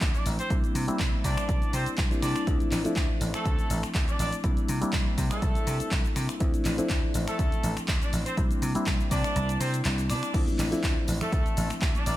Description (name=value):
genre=filtered disco house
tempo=122 BPM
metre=4/4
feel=swing 54% on 16ths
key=D minor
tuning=A4 = 438 Hz
part: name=reed electric piano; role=accompaniment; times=0.0-12.2 s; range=F3 to E4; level=-32 LUFS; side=left 1 dB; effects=phaser, sidechain pumping
part: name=vintage slap bass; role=bass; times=0.0-12.2 s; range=A1 to C3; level=-30 LUFS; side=equal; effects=sidechain pumping
part: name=electronic kick drum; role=drums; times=0.0-11.9 s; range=none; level=-28 LUFS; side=equal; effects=none
part: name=punchy analog drum machine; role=drums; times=0.0-12.2 s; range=crash cymbal, finger snaps, handclaps, hi-hat, shaker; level=-34 LUFS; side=equal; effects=sidechain pumping on hats, sidechain pumping on perc, sidechain pumping on cymbals
part: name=clear horn section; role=melody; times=0.1-12.2 s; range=A3 to D5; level=-34 LUFS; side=equal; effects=sidechain pumping, analog delay
part: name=tambourine and congas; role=percussion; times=10.3-12.2 s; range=none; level=-39 LUFS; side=right 2 dB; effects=none
room=light reverb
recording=none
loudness=-24 LUFS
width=side -15 dB against mid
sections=0.0-12.2 A section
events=kick drops out 9.4-10.3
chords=0.0 Dm9; 0.5 C9; 2.5 Dm9; 4.4 C9; 6.4 Dm9; 8.4 C9; 10.3 Dm9